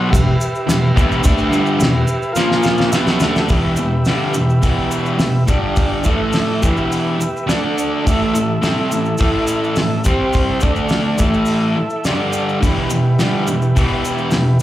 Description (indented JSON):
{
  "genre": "garage rock duo or trio",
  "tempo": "105 BPM",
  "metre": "4/4",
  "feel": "straight",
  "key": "E minor",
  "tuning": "A4 = 440 Hz",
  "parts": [
    { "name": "combo organ", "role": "sustained chords", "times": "0.0-14.6 s", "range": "C4 to F#5", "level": "-22 LUFS", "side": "right 1 dB", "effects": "none" },
    { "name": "fuzz guitar", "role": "riff", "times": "0.0-14.6 s", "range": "E2 to D4", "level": "-16 LUFS", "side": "equal", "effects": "distortion, slapback echo" },
    { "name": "cloth-damped thuddy drum kit", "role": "drums", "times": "0.1-14.5 s", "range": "crash cymbal, hi-hat, kick drum, snare drum", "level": "-18 LUFS", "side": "equal", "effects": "none" },
    { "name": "tube shaker", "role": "percussion", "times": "0.1-14.6 s", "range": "none", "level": "-31 LUFS", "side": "right 2 dB", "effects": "none" }
  ],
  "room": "light reverb",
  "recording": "live gig heard through the venue's PA, club reverb",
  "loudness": "-14 LUFS",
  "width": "side -13 dB against mid",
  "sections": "0.0-3.5 A section; 3.5-14.6 B section",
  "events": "drum fill 2.4-3.5",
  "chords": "0.1 Em; 2.4 A#5; 2.9 Em; 5.5 G5; 6.1 A5; 6.6 Em; 7.5 D5; 8.1 A5; 10.1 C5; 10.6 D5; 11.2 A5; 12.1 G5; 12.6 Em",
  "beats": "0.11 0.68 | 1.24 1.80 2.37 2.94 | 3.50 4.07 4.64 5.21 | 5.78 6.35 6.92 7.49 | 8.06 8.63 9.20 9.77 | 10.34 10.91 11.48 12.05 | 12.62 13.19 13.76 14.33"
}